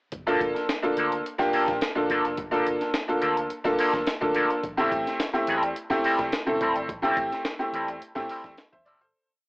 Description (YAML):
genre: funk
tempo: 106 BPM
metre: 4/4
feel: straight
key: G dorian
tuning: A4 = 445 Hz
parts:
  - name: clean electric guitar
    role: accompaniment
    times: 0.1-9.1 s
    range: F3 to A4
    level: -28 LUFS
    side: equal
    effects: wah, cassette tape
  - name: vintage muted fingered electric bass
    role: bass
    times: 0.1-9.1 s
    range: F1 to A2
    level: -46 LUFS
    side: equal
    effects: none
  - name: breakbeat sampler-style drum kit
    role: drums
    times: 0.1-9.1 s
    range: hi-hat, kick drum, snare drum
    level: -32 LUFS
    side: equal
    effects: cassette tape
  - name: bright upright piano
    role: stabs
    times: 0.3-9.3 s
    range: A3 to E5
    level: -25 LUFS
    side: equal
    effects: cassette tape
room: light reverb, digital ambience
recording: home recording on cassette, AM radio sound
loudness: -23 LUFS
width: side -37 dB against mid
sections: 0.1-9.1 A section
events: fade-out 6.9-9.1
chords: 0.1 Gm9; 4.6 Am7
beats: | 0.12 0.68 1.25 1.81 | 2.37 2.94 3.50 4.06 | 4.63 5.19 5.76 6.32 | 6.88 7.45 8.01 8.58